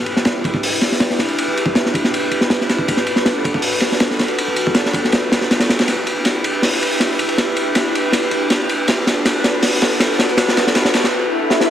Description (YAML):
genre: drum and bass, jungle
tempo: 160 BPM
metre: 4/4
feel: straight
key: E minor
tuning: A4 = 440 Hz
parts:
  - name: airy breathy pad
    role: sustained chords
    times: 0.0-11.7 s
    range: D4 to B4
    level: -20 LUFS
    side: equal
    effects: chorus, vintage 12-bit sampler grit
  - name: warm 808-style bass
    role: bass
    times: 0.0-11.1 s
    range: D1 to B1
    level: -40 LUFS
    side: equal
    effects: none
  - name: crunchy breakbeat drum kit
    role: drums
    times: 0.1-11.7 s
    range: hi-hat, kick drum, ride cymbal, snare drum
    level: -16 LUFS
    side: equal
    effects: high-pass filter on kick, high-pass filter on cymbals, high-pass filter on hats, high-pass filter on snare, high-pass filter on room
  - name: swell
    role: sound effects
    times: 11.3-11.7 s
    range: none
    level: -19 LUFS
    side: left 2 dB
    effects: none
room: light reverb, small room ambience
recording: vinyl crackle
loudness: -14 LUFS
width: side -10 dB against mid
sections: 0.0-11.7 A section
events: build-up 0.0-11.7; drum fill 5.9-11.1, 11.5; swell 11.3-11.7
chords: 0.0 Em7; 2.9 Bm7; 5.9 Em7; 8.9 Bm7